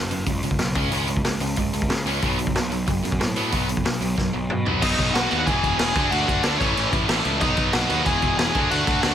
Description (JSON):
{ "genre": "punk rock", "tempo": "185 BPM", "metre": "4/4", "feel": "straight", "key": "unclear", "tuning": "A4 = 439 Hz", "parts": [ { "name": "crunchy overdriven guitar", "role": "riff", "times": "0.0-9.1 s", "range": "E2 to D4", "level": "-28 LUFS", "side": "left 12 dB", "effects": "none" }, { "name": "distorted electric guitar", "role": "riff", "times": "0.0-9.1 s", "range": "E2 to D4", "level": "-28 LUFS", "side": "right 13 dB", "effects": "distortion" }, { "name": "fuzz picked electric bass", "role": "bass", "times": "0.0-9.1 s", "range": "E1 to C#3", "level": "-27 LUFS", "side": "equal", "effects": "overdrive" }, { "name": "raw garage drum kit", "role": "drums", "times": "0.1-9.1 s", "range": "crash cymbal, hi-hat, kick drum, snare drum, toms", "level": "-24 LUFS", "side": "equal", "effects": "none" }, { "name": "bluesy overdriven lead guitar", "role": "melody", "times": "4.8-9.1 s", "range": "C#4 to G#5", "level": "-25 LUFS", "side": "equal", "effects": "distortion" }, { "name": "heavy high-gain guitar", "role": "riff", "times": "4.8-9.1 s", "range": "A2 to F#4", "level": "-27 LUFS", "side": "equal", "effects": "distortion" } ], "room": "little or no reverb", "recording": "none", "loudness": "-19 LUFS", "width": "side -10 dB against mid", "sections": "0.0-4.8 A section; 4.8-9.1 B section", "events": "drum fill 4.2-4.8", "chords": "0.0 F#5; 0.8 C#5; 2.2 B5; 4.8 B; 5.5 E; 6.0 D; 6.6 A; 7.4 B; 8.1 E; 8.6 D" }